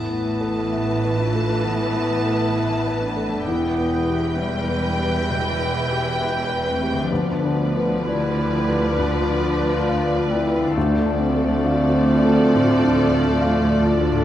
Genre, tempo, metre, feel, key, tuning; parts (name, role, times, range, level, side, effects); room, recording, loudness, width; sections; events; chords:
cinematic; 66 BPM; 4/4; rubato; A4 = 440 Hz
warm symphonic violin section; melody; 0.0-14.2 s; D5 to A5; -28 LUFS; left 1 dB
warm clarinet; second line; 0.0-14.2 s; F3 to E4; -28 LUFS; left 1 dB
warm symphonic violin section; second line; 0.0-14.2 s; A4 to B4; -30 LUFS; left 1 dB
felt-muted upright piano; accompaniment; 0.0-14.2 s; D2 to F5; -26 LUFS; left 2 dB
warm symphonic viola section; accompaniment; 0.0-14.2 s; E3 to F3; -30 LUFS; right 1 dB
mellow French horn section; sustained chords; 0.0-14.2 s; B3 to G4; -23 LUFS; left 1 dB
concert harp; arpeggios; 0.0-14.2 s; A2 to B4; -32 LUFS; left 5 dB
rich symphonic cello section; bass; 0.0-14.2 s; D2 to A2; -27 LUFS; right 3 dB
rich symphonic double bass section; bass; 0.0-14.2 s; E1 to D2; -27 LUFS; right 2 dB
wet recital hall reverb, RT60 1.4 s; heard from further back in the room; -18 LUFS; side -12 dB against mid
0.0-14.2 A section
0.0 Asus2; 3.5 Em; 7.1 Bdim/D; 10.8 Dm7